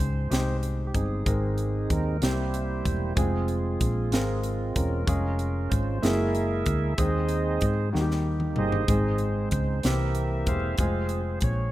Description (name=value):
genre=slow gospel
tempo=63 BPM (dotted quarters)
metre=6/8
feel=straight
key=Ab major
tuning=A4 = 438 Hz
part: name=warm grand piano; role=accompaniment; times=0.0-11.7 s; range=Ab2 to Bb4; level=-32 LUFS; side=left 2 dB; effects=none
part: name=percussive tonewheel organ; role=sustained chords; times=0.0-11.7 s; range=E3 to F5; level=-30 LUFS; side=right 3 dB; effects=slow rotary speaker
part: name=hollow-body short-scale fingered electric bass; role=bass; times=0.0-11.7 s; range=E1 to Ab2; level=-27 LUFS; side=equal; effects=none
part: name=crisp fusion drum kit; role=drums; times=0.0-11.6 s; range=hi-hat, kick drum, snare drum, toms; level=-29 LUFS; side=equal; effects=none
room=studio reverb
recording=rough home demo mix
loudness=-24 LUFS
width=side -15 dB against mid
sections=0.0-11.7 A section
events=tonewheel organ solo 0.0-11.7; drum fill 7.9-8.9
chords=0.0 Ab; 2.2 C7; 3.2 Fm; 5.1 Db/F; 6.0 Gb9; 7.0 Ab/Eb; 7.9 Eb; 8.9 Ab; 9.8 C7; 10.8 Fm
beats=0.30 | 1.26 2.21 | 3.17 4.12 | 5.08 6.03 | 6.98 7.93 | 8.88 9.84 | 10.79